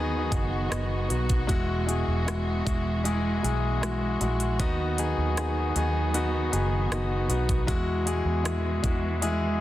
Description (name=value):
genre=pop ballad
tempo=78 BPM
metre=4/4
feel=straight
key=unclear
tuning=A4 = 439 Hz
part: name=clear concert grand piano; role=accompaniment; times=0.0-9.6 s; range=B2 to G#5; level=-28 LUFS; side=left 2 dB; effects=none
part: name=warm studio string section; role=sustained chords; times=0.0-9.6 s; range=D#3 to F#4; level=-34 LUFS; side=right 2 dB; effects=none
part: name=vintage muted fingered electric bass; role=bass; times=0.0-9.6 s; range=E1 to E2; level=-28 LUFS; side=equal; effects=none
part: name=pop drum kit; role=drums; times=0.3-9.4 s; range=hi-hat, kick drum, rim click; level=-30 LUFS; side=equal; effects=soft clipping on snare
room=light reverb, studio reverb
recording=dense, heavily limited modern master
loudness=-24 LUFS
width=side -14 dB against mid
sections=0.0-9.6 A section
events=grand piano fill 0.0-1.5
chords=0.0 B; 1.5 Eadd9; 4.6 B/D#; 7.7 Eadd9